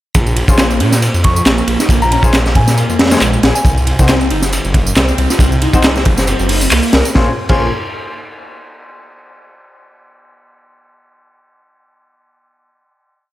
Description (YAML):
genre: breakbeat, breaks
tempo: 137 BPM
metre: 4/4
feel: swing 55% on 16ths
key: Bb minor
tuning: A4 = 440 Hz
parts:
  - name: phased detuned saw bass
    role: bass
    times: 0.1-7.7 s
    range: Gb1 to Bb2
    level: -15 LUFS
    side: equal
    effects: phaser, tube saturation
  - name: crunchy breakbeat drum kit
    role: drums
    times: 0.1-7.6 s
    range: crash cymbal, hi-hat, kick drum, ride cymbal, snare drum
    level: -14 LUFS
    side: equal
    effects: none
  - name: house drum kit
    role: drums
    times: 0.1-7.1 s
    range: handclaps, ride cymbal, tambourine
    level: -21 LUFS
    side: right 2 dB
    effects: none
  - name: clear concert grand piano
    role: stabs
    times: 0.5-7.7 s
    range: C4 to C5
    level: -22 LUFS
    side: left 3 dB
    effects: dub echo
  - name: overdriven synth lead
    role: riff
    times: 0.6-7.7 s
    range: Ab3 to Bb4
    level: -20 LUFS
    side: equal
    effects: distortion, tube saturation, wide subtle chorus, dub echo
  - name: soft synth bell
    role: melody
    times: 1.2-3.7 s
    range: Ab5 to Db6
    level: -21 LUFS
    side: equal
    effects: chorus, phaser, old record sound, dub echo
room: small room ambience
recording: none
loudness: -10 LUFS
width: side -15 dB against mid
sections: 0.1-7.2 drop; 7.2-8.9 final chord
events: drop 0.1-7.2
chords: 0.1 Bbm7; 3.6 Cdim; 7.2 Bbm7